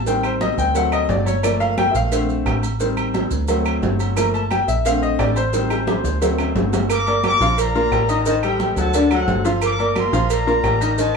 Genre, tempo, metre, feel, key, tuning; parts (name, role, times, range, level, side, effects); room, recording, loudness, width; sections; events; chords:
latin, salsa; 176 BPM; 4/4; straight; G minor; A4 = 438 Hz
bright concert grand piano; accompaniment; 0.0-11.1 s; D3 to Bb5; -20 LUFS; left 3 dB
deep dub fingered electric bass; bass; 0.0-11.2 s; G1 to D2; -23 LUFS; right 1 dB
congas; percussion; 0.1-11.2 s; -29 LUFS; right 1 dB
cowbell and bongos; percussion; 0.1-11.1 s; -26 LUFS; right 4 dB
maracas; percussion; 0.1-11.2 s; -35 LUFS; right 5 dB
agogo bells and timbales; percussion; 0.2-11.0 s; -28 LUFS; right 5 dB
claves; percussion; 0.2-11.2 s; -33 LUFS; right 5 dB
clear trumpet section; melody; 6.9-11.2 s; A4 to D6; -22 LUFS; left 3 dB
wet studio ambience, RT60 0.5 s; band playing live in one room; -16 LUFS; side -5 dB against mid
0.0-6.9 A section; 6.9-11.2 B section
grand piano solo 0.0-6.9; drum fill 5.5-6.9
0.1 Am7b5; 0.8 D7; 1.4 Gm7; 2.1 Bbmaj7; 2.8 Am7b5; 3.5 D7; 4.2 Gm7; 4.9 Bbmaj7; 5.5 Am7b5; 6.2 D7; 6.9 Gm7; 7.6 Bbmaj7; 8.3 Am7b5; 8.9 D7; 9.6 Gm7; 10.3 Bbmaj7